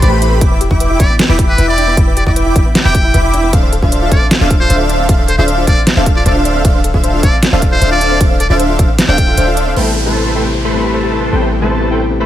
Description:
future bass; 154 BPM; 4/4; half-time; D dorian; A4 = 440 Hz
trumpet with metal mute; melody; 0.0-9.5 s; B4 to G5; -19 LUFS; equal; sidechain pumping, tape echo
airy dreamy lead; arpeggios; 0.0-9.7 s; F5 to D6; -23 LUFS; left 1 dB; chorus, sidechain pumping
soft round pluck; arpeggios; 0.0-12.3 s; B3 to C5; -24 LUFS; left 3 dB; chorus, sidechain pumping, tape echo
dense compressed supersaw; riff; 0.0-12.3 s; A3 to D6; -16 LUFS; equal; sidechain pumping, low-pass filter, tape echo
warm 808-style bass; bass; 0.0-12.3 s; D1 to A1; -15 LUFS; equal; sidechain pumping
dubstep drum kit; drums; 0.0-9.8 s; crash cymbal, hi-hat, ride cymbal, snare drum; -16 LUFS; right 1 dB; studio reverb
electronic kick drum; drums; 0.0-9.3 s; -13 LUFS; equal; studio reverb
felt-muted upright piano; accompaniment; 9.8-12.3 s; C3 to E4; -19 LUFS; left 4 dB; sidechain pumping, tape echo
airy breathy pad; sustained chords; 9.8-12.3 s; C3 to G4; -26 LUFS; right 2 dB
downlifter; sound effects; 9.8-12.3 s; -24 LUFS; equal
light reverb; -9 LUFS; side -12 dB against mid
0.0-9.8 A section; 9.8-12.3 B section
drop 0.0-9.8; kick drops out 9.4-9.8
0.4 Em7; 3.5 Dm7; 9.8 Am7
0.02 | 0.41 0.80 1.19 1.58 | 1.97 2.36 2.75 3.14 | 3.53 3.92 4.31 4.70 | 5.09 5.48 5.87 6.26 | 6.65 7.04 7.43 7.82 | 8.21 8.60 8.98 9.38 | 9.77 10.15 10.54 10.93 | 11.32 11.71 12.10

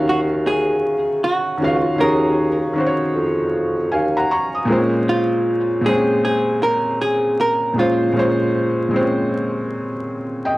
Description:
lo-fi hip hop; 78 BPM; 4/4; swing 64% on 16ths; Eb minor; A4 = 439 Hz
felt-muted upright piano; accompaniment; 0.0-10.6 s; Bb2 to Eb6; -19 LUFS; equal; cassette tape
dark bassoon; bass; 0.0-5.0 s; Db2 to Bb2; -20 LUFS; equal; tube saturation
vintage hollow-body jazz guitar; melody; 0.1-9.3 s; F4 to Bb4; -19 LUFS; equal
moderate small room reverb, RT60 0.5 s; worn, warbling old tape, cassette tape, vinyl crackle, warbly pitch drift; -16 LUFS; side -18 dB against mid
0.0-10.6 A section
0.0 Ebm9; 4.7 Bbm9
0.46 1.23 | 2.00 2.77 3.53 4.30 | 5.07 5.84 6.61 7.38 | 8.15 8.92 9.69 10.46

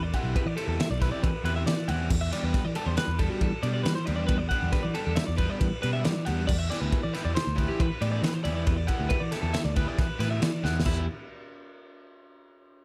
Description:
math rock and midwest emo; 137 BPM; 5/4; straight; E minor; A4 = 441 Hz
twelve-string electric guitar; arpeggios; 0.0-11.1 s; E4 to F#5; -36 LUFS; equal; subtle chorus
picked electric bass; bass; 0.0-11.1 s; B1 to E3; -31 LUFS; equal
loose indie drum kit; drums; 0.1-11.0 s; crash cymbal, kick drum, ride cymbal, snare drum; -32 LUFS; equal
overdriven semi-hollow guitar; riff; 0.2-11.0 s; E3 to G4; -37 LUFS; equal
light reverb, studio ambience; -27 LUFS; mono
0.0-10.9 A section; 10.9-12.8 B section
drum fill 10.7
0.0 Cmaj9; 2.1 G69/E; 6.5 Em7; 10.9 N.C.
0.35 0.79 1.23 1.67 | 2.10 2.54 2.98 3.42 3.86 | 4.30 4.73 5.17 5.61 6.05 | 6.49 6.92 7.36 7.80 8.24 | 8.68 9.12 9.55 9.99 10.43 | 10.87

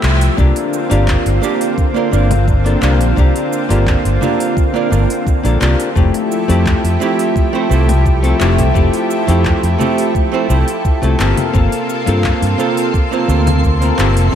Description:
sunset chillout; 86 BPM; 4/4; straight; A4 = 439 Hz
archtop guitar, miked and amplified; accompaniment; 0.0-14.3 s; A3 to C5; -18 LUFS; moving between left 5 dB and right 8 dB; auto-pan, analog delay
lush unison pad; sustained chords; 0.0-14.3 s; C3 to E5; -18 LUFS; equal; chorus
fingered electric bass with an envelope filter; bass; 0.0-14.3 s; F1 to G2; -13 LUFS; equal
deep house drum kit; drums; 0.0-14.3 s; congas, handclaps, hi-hat, shaker; -23 LUFS; left 2 dB
electronic kick drum; drums; 0.4-13.8 s; -15 LUFS; equal
twinkling granular texture; texture; 12.2-14.3 s; C6; -28 LUFS; right 2 dB; built-in reverb, wide subtle chorus
moderate lush hall reverb, RT60 1.9 s; dreamy mix soaked in reverb; -12 LUFS; side -9 dB against mid
0.4-14.3 A section
band accent 0.0-0.4
0.4 C9sus4; 6.0 Fmaj9; 11.2 Gm11
| 0.38 1.08 1.78 2.48 | 3.17 3.87 4.57 5.27 | 5.96 6.66 7.36 8.06 | 8.75 9.45 10.15 10.85 | 11.54 12.24 12.94 13.64 | 14.34

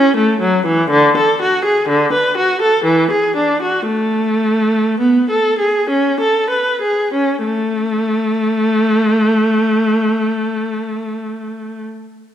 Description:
classical, baroque-style suite movement for unaccompanied viola; 47-66 BPM; 3/4; rubato; A major; A4 = 441 Hz
rich viola; solo; 0.0-11.8 s; D3 to B4; -13 LUFS; equal
moderate recital hall reverb, RT60 1.7 s; minimal, uncompressed stereo recording; -13 LUFS; side -10 dB against mid
0.0-7.4 A section; 7.4-11.1 B section
slowing down 0.0-7.4
| 0.90 1.87 2.85 | 3.90 5.02 6.19 | 7.43 8.63 9.83

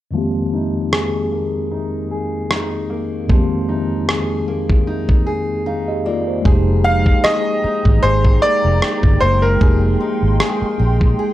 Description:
contemporary R&B; 76 BPM; 4/4; swing 54% on 16ths; F minor; A4 = 440 Hz
mellow tine electric piano; accompaniment; 0.1-11.3 s; F2 to F5; -22 LUFS; equal; medium stereo tremolo, low-pass filter
fingerpicked steel-string acoustic guitar; arpeggios; 0.1-11.3 s; F3 to Ab4; -23 LUFS; left 2 dB; low-pass filter, analog delay
dusty soul sampler-style drum kit; drums; 0.9-11.2 s; kick drum, rim click; -16 LUFS; equal; vintage 12-bit sampler grit
hollow soft pad; sustained chords; 6.5-11.3 s; Ab3 to C6; -27 LUFS; right 3 dB; ensemble chorus, sidechain pumping
vintage muted fingered electric bass; bass; 6.5-11.1 s; F1 to Bb1; -16 LUFS; equal
bright concert grand piano; melody; 6.8-11.0 s; Bb4 to F5; -18 LUFS; equal
digital ambience; dry, gritty hardware recording; -14 LUFS; side -14 dB against mid
0.1-6.5 A section; 6.5-11.3 B section
filter sweep 0.1-6.5; break 5.7-6.5; hi-hats muted 6.5-11.3
0.1 Fm11
| 0.14 0.93 1.72 2.51 | 3.30 4.09 4.88 5.67 | 6.45 7.24 8.03 8.82 | 9.61 10.40 11.19

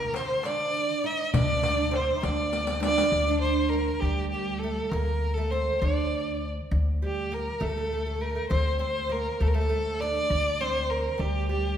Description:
Arabic maqam ensemble; 67 BPM (dotted quarters); 6/8; straight; D maqam hijaz; A4 = 443 Hz
rich violin; melody; 0.0-11.8 s; G4 to Eb5+27c; -28 LUFS; equal
oud; second line; 0.0-11.8 s; G3 to Eb4+25c; -31 LUFS; right 4 dB
upright bass; bass; 0.0-11.8 s; D2 to D3; -29 LUFS; left 1 dB
darbuka; percussion; 0.1-3.1 s; -32 LUFS; left 2 dB
riq; percussion; 0.2-3.1 s; -37 LUFS; left 3 dB
wet recital hall reverb, RT60 1.6 s; recorded in a church or concert hall; -24 LUFS; side -9 dB against mid
0.0-3.1 A section; 3.1-11.8 B section
drum fill 2.5-3.1
0.44 | 1.34 2.23 | 3.13 4.03 | 4.92 5.82 | 6.72 7.62 | 8.51 9.41 | 10.31 11.21

